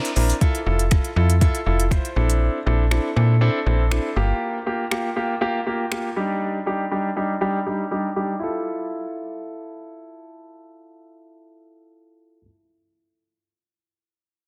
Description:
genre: dance-pop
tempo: 120 BPM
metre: 4/4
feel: straight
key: F major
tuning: A4 = 440 Hz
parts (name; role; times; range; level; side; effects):
- warm concert grand piano; accompaniment; 0.0-12.4 s; G3 to C5; -26 LUFS; equal; sidechain pumping, low-pass filter
- smooth R&B drum kit; drums; 0.0-6.0 s; finger snaps, hi-hat, kick drum, shaker; -24 LUFS; equal; overdrive
- slap-like FM bass; bass; 0.2-4.3 s; F1 to Bb2; -21 LUFS; equal; sidechain pumping
room: moderate lush hall reverb, RT60 2.2 s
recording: dense, heavily limited modern master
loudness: -22 LUFS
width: mono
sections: 0.4-8.4 A section; 8.4-12.4 B section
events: break 0.0-0.4; filter sweep on grand piano 0.4-8.4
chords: 0.4 Fmaj7; 2.2 Bbmaj9#11; 4.2 Gm7; 6.2 Ebmaj7/G; 8.4 Fmaj7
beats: | 0.41 0.91 1.41 1.91 | 2.41 2.91 3.41 3.91 | 4.41 4.91 5.41 5.91 | 6.41 6.91 7.41 7.91 | 8.41 8.91 9.41 9.91 | 10.41 10.91 11.41 11.91

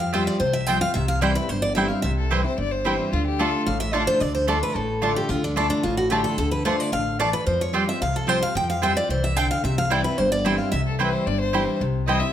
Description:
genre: bluegrass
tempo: 221 BPM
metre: 4/4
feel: straight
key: unclear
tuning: A4 = 438 Hz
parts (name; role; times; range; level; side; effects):
- picked steel-string acoustic guitar; melody; 0.0-10.8 s; D4 to G5; -24 LUFS; equal; slapback echo
- picked steel-string acoustic guitar; accompaniment; 0.0-12.3 s; G2 to F4; -26 LUFS; left 1 dB; none
- upright bass; bass; 0.0-12.2 s; G1 to F2; -27 LUFS; equal; none
- mandolin; stabs; 0.1-12.2 s; A3 to A5; -26 LUFS; right 3 dB; none
- rich fiddle; second line; 2.2-3.6, 10.9-12.3 s; F4 to E5; -28 LUFS; left 5 dB; none
room: moderate large studio reverb, RT60 1.2 s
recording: none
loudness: -20 LUFS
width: side -10 dB against mid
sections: 0.0-3.1 A section; 3.1-11.8 A section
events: none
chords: 0.0 Fsus2; 1.0 C; 3.1 Dm; 7.5 Fsus2; 9.6 C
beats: 0.14 0.41 0.68 | 0.95 1.22 1.50 1.77 | 2.04 2.31 2.58 2.85 | 3.12 3.40 3.67 3.94 | 4.21 4.48 4.75 5.03 | 5.30 5.57 5.84 6.11 | 6.38 6.65 6.92 7.20 | 7.47 7.74 8.01 8.28 | 8.55 8.82 9.10 9.37 | 9.64 9.91 10.18 10.45 | 10.72 11.00 11.27 11.54 | 11.81 12.08

